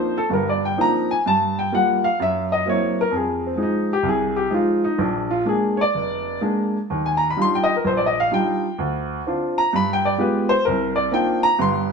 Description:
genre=solo jazz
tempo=128 BPM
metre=4/4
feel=swing 68% on 8ths, rubato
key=C minor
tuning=A4 = 440 Hz
part: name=warm baby grand piano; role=solo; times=0.0-11.9 s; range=F1 to C6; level=-18 LUFS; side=equal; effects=none
room=moderate stone room reverb, RT60 1.3 s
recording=band playing live in one room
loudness=-18 LUFS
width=side -5 dB against mid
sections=0.0-11.9 A section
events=grand piano solo 0.0-11.9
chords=0.0 Cm11; 1.2 Gm9; 2.2 F#7#11; 3.1 Fm7; 5.0 Bb7; 6.9 Ebmaj9; 8.8 Dm7; 9.7 G7b9; 10.7 Cm11

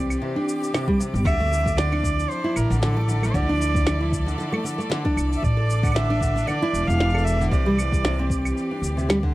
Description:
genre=folktronica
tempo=115 BPM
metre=4/4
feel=swing 56% on 16ths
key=D minor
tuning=A4 = 443 Hz
part: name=clear string quartet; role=sustained chords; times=0.0-9.3 s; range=E3 to D5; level=-31 LUFS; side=equal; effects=none
part: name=nylon-string guitar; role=arpeggios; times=0.0-9.3 s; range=C3 to A4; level=-26 LUFS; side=equal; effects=tape echo
part: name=upright bass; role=bass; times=0.0-9.3 s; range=E1 to D2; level=-23 LUFS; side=equal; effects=none
part: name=backwards swelling texture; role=texture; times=0.0-9.3 s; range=D6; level=-39 LUFS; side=right 4 dB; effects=built-in reverb
part: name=electronic claves, cabasa and snare drum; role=drums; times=0.1-9.2 s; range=none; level=-29 LUFS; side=equal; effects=none
part: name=electronic kick drum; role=drums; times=0.9-9.3 s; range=none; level=-25 LUFS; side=equal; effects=none
part: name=clear cello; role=melody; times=1.2-8.5 s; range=A4 to F5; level=-28 LUFS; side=right 2 dB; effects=tape echo
room=light reverb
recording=dry, close 1970s-style studio recording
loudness=-20 LUFS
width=side -17 dB against mid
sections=0.0-9.3 A section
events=none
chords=0.0 Cadd9; 1.3 Dmadd9; 5.4 Asus4; 7.5 Cadd9

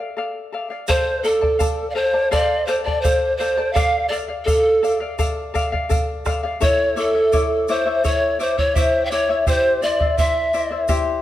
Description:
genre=andean folk, Andean ensemble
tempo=84 BPM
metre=4/4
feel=straight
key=D minor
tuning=A4 = 440 Hz
part: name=breathy polished pan flute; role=melody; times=0.0-10.8 s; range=A4 to F5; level=-19 LUFS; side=equal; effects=none
part: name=charango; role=accompaniment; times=0.0-11.2 s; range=E4 to A5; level=-23 LUFS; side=left 4 dB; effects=none
part: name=breathy pan flute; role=second line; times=0.9-10.8 s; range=A4 to G5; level=-26 LUFS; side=right 4 dB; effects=none
part: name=bombo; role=percussion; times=0.9-11.1 s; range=none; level=-23 LUFS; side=right 1 dB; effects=none
part: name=egg shaker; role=percussion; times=0.9-11.0 s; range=none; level=-36 LUFS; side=right 5 dB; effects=none
room=wet recital hall reverb, RT60 1.6 s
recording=dark, warm production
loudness=-17 LUFS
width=side -13 dB against mid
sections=0.9-11.2 A section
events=break 0.0-0.9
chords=0.0 Dm; 0.9 F; 3.8 Dm; 6.6 A; 9.5 C

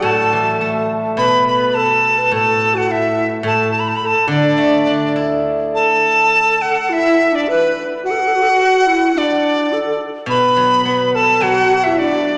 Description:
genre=chinese traditional, Chinese chamber ensemble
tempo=105 BPM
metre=2/4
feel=rubato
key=D gong mode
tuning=A4 = 442 Hz
part: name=bright reedy dizi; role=melody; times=0.0-12.4 s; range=B4 to B5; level=-17 LUFS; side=equal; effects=none
part: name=bright reedy low xiao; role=second line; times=0.0-12.4 s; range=D4 to B4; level=-21 LUFS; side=equal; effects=none
part: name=steel-string zither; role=accompaniment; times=0.0-6.3, 10.3-12.4 s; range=A2 to A4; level=-24 LUFS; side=equal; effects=none
room=wet concert hall reverb, RT60 2.6 s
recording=none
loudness=-15 LUFS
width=mono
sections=0.0-5.7 A section; 5.7-12.4 B section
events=none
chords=none

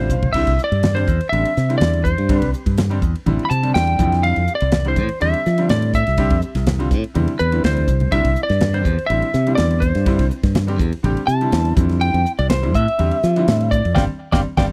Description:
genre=electric jazz fusion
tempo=123 BPM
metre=4/4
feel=straight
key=C major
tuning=A4 = 440 Hz
part: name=lightly driven lead guitar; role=melody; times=0.0-14.7 s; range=B4 to B5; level=-23 LUFS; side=equal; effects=none
part: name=bright concert grand piano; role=accompaniment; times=0.0-14.7 s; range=D3 to F5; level=-27 LUFS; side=equal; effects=none
part: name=modern bright fingered electric bass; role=bass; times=0.0-14.7 s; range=G1 to F3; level=-21 LUFS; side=equal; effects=none
part: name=crisp fusion drum kit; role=drums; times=0.1-14.7 s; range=crash cymbal, hi-hat, kick drum, ride cymbal, snare drum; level=-24 LUFS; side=equal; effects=none
part: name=congas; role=percussion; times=0.1-14.7 s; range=none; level=-27 LUFS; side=equal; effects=none
room=little or no reverb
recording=dry, close 1970s-style studio recording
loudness=-18 LUFS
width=mono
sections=0.3-14.7 A section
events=grand piano fill 0.0-0.3; drum fill 0.0-0.3, 7.6-8.1; band accent 14.0-14.7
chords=0.3 C; 4.0 Fmaj9; 8.1 C; 11.8 Fmaj9; 14.0 Gsus4

